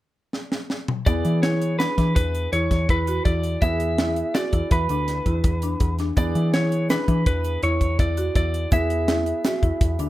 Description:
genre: progressive instrumental, band music in an uneven meter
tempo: 165 BPM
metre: 7/4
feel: straight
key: E mixolydian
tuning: A4 = 440 Hz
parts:
  - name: crisp fusion drum kit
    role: drums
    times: 0.3-10.1 s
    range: hi-hat, kick drum, snare drum, toms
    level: -23 LUFS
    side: equal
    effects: none
  - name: lightly driven lead guitar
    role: melody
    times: 1.1-10.1 s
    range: B4 to E5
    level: -26 LUFS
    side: equal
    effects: plate reverb
  - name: warm concert grand piano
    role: accompaniment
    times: 1.1-10.1 s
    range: B3 to G#4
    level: -32 LUFS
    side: right 2 dB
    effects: none
  - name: buzzing marimba with hard mallets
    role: arpeggios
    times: 1.1-10.1 s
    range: B3 to G#4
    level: -29 LUFS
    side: equal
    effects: none
  - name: overdriven picked electric bass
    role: bass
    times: 1.1-10.1 s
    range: D2 to E3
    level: -24 LUFS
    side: equal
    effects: none
  - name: egg shaker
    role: percussion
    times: 1.1-10.1 s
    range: none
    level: -45 LUFS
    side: right 4 dB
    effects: none
room: light reverb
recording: none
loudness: -20 LUFS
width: side -15 dB against mid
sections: 0.0-1.1 A section; 1.1-10.1 B section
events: drum fill 0.3-1.1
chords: 0.0 N.C.; 1.1 E7

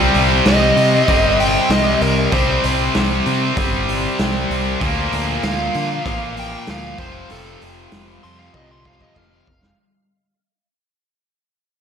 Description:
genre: hard rock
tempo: 96 BPM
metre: 4/4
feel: straight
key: unclear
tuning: A4 = 440 Hz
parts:
  - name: tight distorted guitar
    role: riff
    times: 0.0-9.5 s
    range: F2 to C4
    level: -21 LUFS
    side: left 10 dB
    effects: distortion, slapback echo
  - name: tight distorted guitar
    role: riff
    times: 0.0-9.5 s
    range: F2 to C4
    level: -21 LUFS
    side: right 10 dB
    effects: distortion
  - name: modern bright picked electric bass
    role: bass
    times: 0.0-9.7 s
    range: F1 to D3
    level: -23 LUFS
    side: equal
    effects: none
  - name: raw garage drum kit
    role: drums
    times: 0.1-9.8 s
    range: hi-hat, kick drum, snare drum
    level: -22 LUFS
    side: equal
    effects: none
  - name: smooth overdriven lead guitar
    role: melody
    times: 0.5-9.8 s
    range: A4 to C6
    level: -20 LUFS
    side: equal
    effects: slapback echo
room: moderate lush hall reverb, RT60 2.1 s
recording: big arena sound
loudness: -14 LUFS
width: side -7 dB against mid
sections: 0.0-9.8 A section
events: fade-out 0.0-9.8; lead electric guitar solo 0.0-9.8; drum fill 8.5-9.8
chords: 0.0 C5; 4.8 Bb/D; 7.0 F5

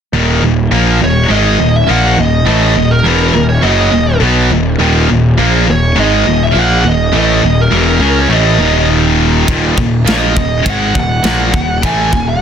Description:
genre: heavy metal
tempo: 102 BPM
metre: 4/4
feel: straight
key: Eb phrygian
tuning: A4 = 440 Hz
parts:
  - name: distorted electric guitar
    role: riff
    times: 0.1-12.4 s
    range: Eb2 to Db4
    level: -15 LUFS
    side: right 9 dB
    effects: overdrive
  - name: heavy high-gain guitar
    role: riff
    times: 0.1-12.4 s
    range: Eb2 to Db4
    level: -14 LUFS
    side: left 10 dB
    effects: distortion
  - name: fuzz picked electric bass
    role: bass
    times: 0.1-12.4 s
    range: Eb1 to Db2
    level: -14 LUFS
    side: equal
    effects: overdrive
  - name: bluesy overdriven lead guitar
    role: melody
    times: 1.0-12.4 s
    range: Bb4 to Ab5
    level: -16 LUFS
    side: right 2 dB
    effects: distortion, tape echo
  - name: tight metal drum kit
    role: drums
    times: 9.5-12.3 s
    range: kick drum, ride cymbal, snare drum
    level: -17 LUFS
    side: equal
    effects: none
room: light reverb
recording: dense, heavily limited modern master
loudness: -9 LUFS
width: side -8 dB against mid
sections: 0.1-12.4 A section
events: none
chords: 0.1 Ebm

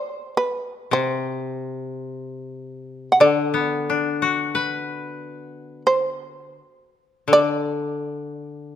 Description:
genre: japanese traditional, Japanese chamber music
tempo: free time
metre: none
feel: none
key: unclear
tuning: A4 = 440 Hz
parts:
  - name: shamisen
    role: melody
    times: 0.0-8.8 s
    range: B4 to F#5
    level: -18 LUFS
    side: right 1 dB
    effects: none
  - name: koto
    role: accompaniment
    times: 0.9-8.8 s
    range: C3 to B4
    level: -24 LUFS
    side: left 4 dB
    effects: none
room: moderate recital hall reverb, RT60 1.8 s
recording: close, detailed microphones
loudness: -20 LUFS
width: side -10 dB against mid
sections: 0.0-8.8 A section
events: none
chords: none

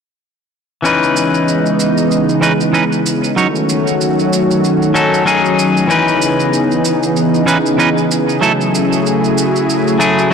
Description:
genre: sunset chillout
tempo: 95 BPM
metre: 4/4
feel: swing 57% on 16ths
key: C# minor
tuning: A4 = 440 Hz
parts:
  - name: clean electric guitar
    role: accompaniment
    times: 0.8-10.3 s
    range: E3 to C#5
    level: -15 LUFS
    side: moving between left 4 dB and right 4 dB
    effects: auto-pan, low-pass filter, tape echo
  - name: lush unison pad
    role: sustained chords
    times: 0.8-10.3 s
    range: C#3 to G#4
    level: -14 LUFS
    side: equal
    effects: chorus
  - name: shaker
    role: drums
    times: 0.9-10.3 s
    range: none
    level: -24 LUFS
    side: right 5 dB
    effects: overdrive
room: moderate plate reverb, RT60 3.7 s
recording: blown-out, overdriven recording, overdrive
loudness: -11 LUFS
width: side -6 dB against mid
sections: 0.8-10.3 A section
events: none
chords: 0.8 C#m9; 3.4 D#m7b5; 5.9 C#m9; 8.4 F#m9

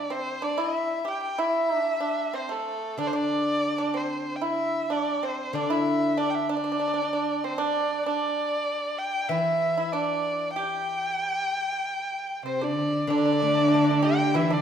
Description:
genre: chinese traditional, Chinese chamber ensemble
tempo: 95 BPM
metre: 4/4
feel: rubato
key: unclear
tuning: A4 = 440 Hz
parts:
  - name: dark erhu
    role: melody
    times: 0.0-14.6 s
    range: A4 to G5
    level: -27 LUFS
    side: equal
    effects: none
  - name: pipa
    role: second line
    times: 0.0-14.6 s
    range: A3 to G4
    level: -30 LUFS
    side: right 3 dB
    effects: none
  - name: steel-string zither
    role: accompaniment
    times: 3.0-14.6 s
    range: D3 to D4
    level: -28 LUFS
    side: left 2 dB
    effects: none
  - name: warm cello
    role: second line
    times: 12.4-14.6 s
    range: C3 to E3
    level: -29 LUFS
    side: right 8 dB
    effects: none
  - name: mellow low xiao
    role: second line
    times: 12.5-14.6 s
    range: D4 to C5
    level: -27 LUFS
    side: left 3 dB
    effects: none
room: wet recital hall reverb, RT60 1.4 s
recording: minimal, uncompressed stereo recording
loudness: -24 LUFS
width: side -8 dB against mid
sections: 0.0-13.1 A section; 13.1-14.6 B section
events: none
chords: none

